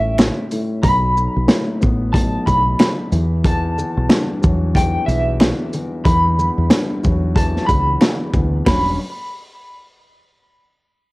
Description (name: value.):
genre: hip hop, boom-bap hip-hop.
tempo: 92 BPM.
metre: 4/4.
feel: swing 61% on 16ths.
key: E dorian.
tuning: A4 = 441 Hz.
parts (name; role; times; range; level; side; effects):
electric guitar at the edge of break-up; melody; 0.0-9.0 s; E5 to B5; -20 LUFS; equal; tremolo, high-pass filter, low-pass filter, cassette tape, analog delay.
dark grand piano; accompaniment; 0.0-9.0 s; B1 to C#4; -23 LUFS; left 1 dB; cassette tape, high-pass filter, low-pass filter.
deep dub fingered electric bass; bass; 0.0-9.0 s; E1 to E2; -19 LUFS; equal; none.
crunchy breakbeat drum kit; drums; 0.2-8.8 s; hi-hat, kick drum, shaker, snare drum; -16 LUFS; equal; cassette tape.
finger snaps; percussion; 0.2-9.0 s; none; -31 LUFS; right 1 dB; none.
room: light reverb.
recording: home recording on cassette.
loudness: -14 LUFS.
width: side -22 dB against mid.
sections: 0.0-8.7 A section; 8.7-11.1 B section.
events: none.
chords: 0.0 A7; 0.8 Asus2; 3.1 Emadd9; 8.7 Em69.